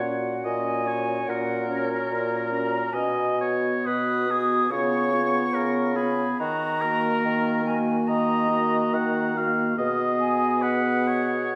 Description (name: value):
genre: classical, slow romantic movement for wind quintet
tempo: 71 BPM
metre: 4/4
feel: rubato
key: F# major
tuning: A4 = 440 Hz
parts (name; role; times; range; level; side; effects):
- silver concert flute; melody; 0.0-11.6 s; C#5 to D#6; -31 LUFS; equal; none
- warm oboe; second line; 0.0-11.6 s; F#4 to F#5; -30 LUFS; equal; none
- mellow clarinet; accompaniment; 0.0-11.6 s; E#4 to G#4; -35 LUFS; equal; none
- warm French horn; accompaniment; 0.0-11.6 s; A#3 to C#4; -31 LUFS; equal; none
- mellow bassoon; bass; 0.0-11.6 s; A#2 to D#3; -30 LUFS; equal; none
room: wet recital hall reverb, RT60 1.6 s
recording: recorded in a church or concert hall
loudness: -24 LUFS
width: mono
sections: 0.0-11.6 A section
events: none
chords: 0.0 F#/A#; 2.9 B69; 4.7 C#7; 6.4 D#m; 9.8 G#m/B